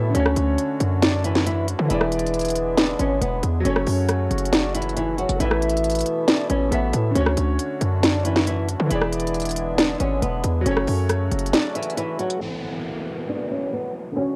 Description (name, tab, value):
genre	hip hop, trap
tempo	137 BPM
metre	4/4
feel	half-time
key	A major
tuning	A4 = 440 Hz
part	clear grand piano	accompaniment	0.0-14.4 s	D3 to E5	-33 LUFS	equal	low-pass filter, cassette tape
part	hand-pumped harmonium	sustained chords	0.0-14.4 s	B2 to F#4	-34 LUFS	equal	low-pass filter, cassette tape
part	hard-hitting 808-style bass	bass	0.0-11.5 s	E1 to D3	-26 LUFS	equal	none
part	flamenco guitar	melody	0.1-14.4 s	E3 to D5	-28 LUFS	equal	low-pass filter, cassette tape, analog delay
part	trap drum kit	drums	0.1-12.4 s	hi-hat, rim click, snare drum	-25 LUFS	equal	cassette tape
part	downlifter	sound effects	12.4-14.4 s	none	-36 LUFS	equal	none
room	light reverb, small room ambience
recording	home recording on cassette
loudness	-22 LUFS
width	mono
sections	0.0-12.4 A section; 12.4-14.4 B section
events	kick muted 11.5-12.4; filter sweep 12.4-14.4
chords	0.1 Dmaj7; 1.9 E7; 3.7 F#m; 5.4 Asus2; 7.2 Dmaj7; 8.9 E7; 10.7 F#m; 12.4 Asus2